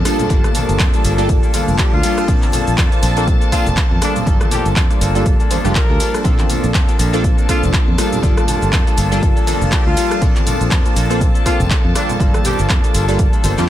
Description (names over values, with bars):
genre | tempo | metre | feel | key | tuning
filtered disco house | 121 BPM | 4/4 | swing 57% on 16ths | unclear | A4 = 436 Hz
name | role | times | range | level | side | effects
funky polysynth comp | accompaniment | 0.0-13.7 s | G3 to C5 | -21 LUFS | right 1 dB | chorus, phaser, cassette tape, sidechain pumping
string machine, full ensemble | sustained chords | 0.0-13.7 s | A5 | -26 LUFS | equal | phaser, ensemble chorus, sidechain pumping
direct-recorded clean electric guitar | riff | 0.0-13.7 s | F3 to A4 | -25 LUFS | left 4 dB | spring reverb, sidechain pumping
fingered electric bass | bass | 0.0-13.7 s | F1 to F2 | -19 LUFS | equal | sidechain pumping
punchy analog drum machine | drums | 0.1-13.7 s | cabasa, handclaps, hi-hat, rim click | -23 LUFS | equal | sidechain pumping on hats, sidechain pumping on perc
tambourine and congas | percussion | 0.1-13.7 s | none | -28 LUFS | left 1 dB | sidechain pumping on perc
electronic kick drum | drums | 0.3-13.3 s | none | -16 LUFS | equal | none
warm horn section | melody | 1.8-12.6 s | D4 to Bb4 | -25 LUFS | left 2 dB | sidechain pumping, dub echo
room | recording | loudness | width
little or no reverb | none | -12 LUFS | side -12 dB against mid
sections
0.0-13.7 A section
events
none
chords
0.1 Gm9; 2.3 Bbmaj7; 4.0 Gm9; 6.2 Bbmaj7; 8.0 Gm9; 10.2 Bbmaj7; 12.0 Gm9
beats
| 0.30 0.80 1.29 1.79 | 2.28 2.78 3.27 3.77 | 4.27 4.76 5.26 5.75 | 6.25 6.75 7.24 7.74 | 8.23 8.73 9.23 9.72 | 10.22 10.71 11.21 11.71 | 12.20 12.70 13.19 13.69